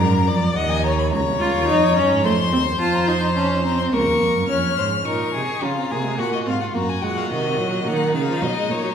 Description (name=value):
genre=classical, baroque-style fugue for string quartet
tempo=107 BPM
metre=3/4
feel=straight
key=unclear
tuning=A4 = 440 Hz
part: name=rich violin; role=melody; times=0.0-8.9 s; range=C#5 to F6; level=-25 LUFS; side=left 7 dB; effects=none
part: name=rich violin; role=second line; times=0.0-8.9 s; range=D#4 to Eb5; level=-24 LUFS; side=left 3 dB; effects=none
part: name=warm cello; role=bass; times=0.0-8.8 s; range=C2 to D#3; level=-23 LUFS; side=right 3 dB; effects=none
part: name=rich viola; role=accompaniment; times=1.4-8.9 s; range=Eb3 to F4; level=-22 LUFS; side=right 1 dB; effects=none
room=wet recital hall reverb, RT60 1.6 s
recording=heard from further back in the room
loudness=-18 LUFS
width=side -8 dB against mid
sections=0.0-4.5 A section; 4.5-8.9 B section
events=none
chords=0.0 Bb; 0.6 Ebm; 1.1 Bbm; 2.2 F5; 2.8 F7; 3.9 Bbm/Db; 4.5 Db/F; 5.6 Bb5; 6.2 Ebm (rootless); 7.3 Cdim; 7.9 D#m